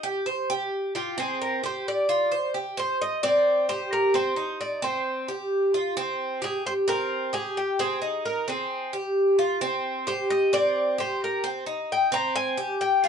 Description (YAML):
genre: latin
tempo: 132 BPM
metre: 4/4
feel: straight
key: C minor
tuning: A4 = 440 Hz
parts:
  - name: Cuban tres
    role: arpeggios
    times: 0.0-13.1 s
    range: C4 to C5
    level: -26 LUFS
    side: right 1 dB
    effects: none
  - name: Cuban tres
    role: melody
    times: 1.0-13.1 s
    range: G4 to Bb5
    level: -25 LUFS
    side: left 1 dB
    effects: none
room: wet small room reverb, RT60 0.5 s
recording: band playing live in one room, nothing above 11.0 kHz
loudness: -23 LUFS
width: side -7 dB against mid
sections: 0.0-3.0 A section; 3.0-13.1 B section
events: Cuban tres solo 0.0-3.0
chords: 0.0 C5; 1.2 Fsus2; 3.0 Cm; 4.8 Fsus2 (rootless); 6.6 Cm7; 8.5 Fmadd9; 10.3 Cm; 12.1 Fmadd9 (rootless)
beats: 0.26 0.71 | 1.17 1.63 2.08 2.54 | 3.00 3.45 3.91 4.37 | 4.82 5.28 5.74 6.19 | 6.65 7.10 7.56 8.02 | 8.47 8.93 9.38 9.84 | 10.29 10.75 11.21 11.66 | 12.12 12.57 13.03